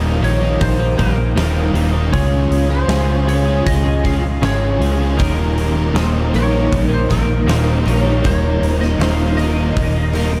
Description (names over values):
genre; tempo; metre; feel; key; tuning
rock, shoegaze and dream pop; 79 BPM; 4/4; straight; Eb mixolydian; A4 = 441 Hz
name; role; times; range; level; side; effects
overdriven electric guitar; riff; 0.0-10.4 s; Eb2 to Ab4; -25 LUFS; equal; subtle chorus
twelve-string electric guitar; riff; 0.0-10.4 s; Eb2 to Ab4; -23 LUFS; equal; reverse reverb
vintage muted fingered electric bass; bass; 0.0-10.4 s; Eb1 to Db2; -20 LUFS; equal; none
lightly driven lead guitar; melody; 0.2-10.4 s; Bb4 to F5; -26 LUFS; equal; analog chorus, tape echo
huge arena drum kit; drums; 0.2-10.3 s; hi-hat, kick drum, snare drum; -25 LUFS; equal; none
picked twelve-string acoustic guitar; arpeggios; 5.2-10.4 s; Bb4 to Db5; -30 LUFS; equal; ensemble chorus, tape echo
room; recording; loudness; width
moderate huge ambient reverb, RT60 8.1 s; dreamy mix soaked in reverb; -16 LUFS; mono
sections
0.0-10.4 A section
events
none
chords
0.0 Eb; 2.1 Db; 5.2 Eb7